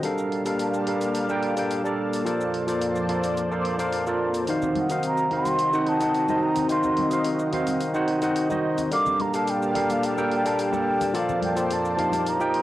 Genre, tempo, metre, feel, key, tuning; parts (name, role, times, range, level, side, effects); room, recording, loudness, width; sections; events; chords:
sunset chillout; 108 BPM; 4/4; straight; Bb major; A4 = 442 Hz
barky tine electric piano; accompaniment; 0.0-12.6 s; Eb3 to G5; -24 LUFS; equal; auto-pan, low-pass filter, cassette tape, analog delay
lush unison pad; sustained chords; 0.0-12.6 s; F3 to A5; -29 LUFS; equal; chorus, phaser, cassette tape
electronic hi-hat and cabasa; drums; 0.0-12.6 s; -39 LUFS; equal; overdrive, cassette tape
congas and bongos; percussion; 4.6-12.2 s; -37 LUFS; left 8 dB
mellow hollow concert flute; melody; 4.8-12.6 s; F5 to D6; -26 LUFS; right 1 dB; cassette tape
moderate spring reverb, RT60 2.4 s; home recording on cassette; -22 LUFS; side -15 dB against mid
0.0-12.6 A section
0.0 Gm9; 2.3 Bbmaj9/F; 4.5 Ebm6; 8.9 Gm9; 11.1 Bbmaj9/F